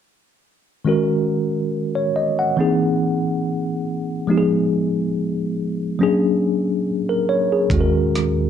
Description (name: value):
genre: R&B, neo-soul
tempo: 70 BPM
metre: 4/4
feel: swing 53% on 16ths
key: unclear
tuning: A4 = 439 Hz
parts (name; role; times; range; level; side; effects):
- mellow tine electric piano; accompaniment; 0.8-8.5 s; Eb3 to Gb5; -18 LUFS; equal; medium stereo tremolo
- upright bass; bass; 7.7-8.5 s; Eb2; -22 LUFS; right 1 dB; none
- dusty soul sampler-style drum kit; drums; 7.7-8.4 s; hi-hat, kick drum, rim click; -22 LUFS; right 1 dB; overdrive
room: moderate studio reverb, RT60 0.7 s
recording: none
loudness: -18 LUFS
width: side -8 dB against mid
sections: 0.8-8.5 A section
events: none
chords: 0.8 Ebm7; 2.6 C7alt; 4.3 Fm7b5; 6.0 Bb7alt; 7.7 Ebm7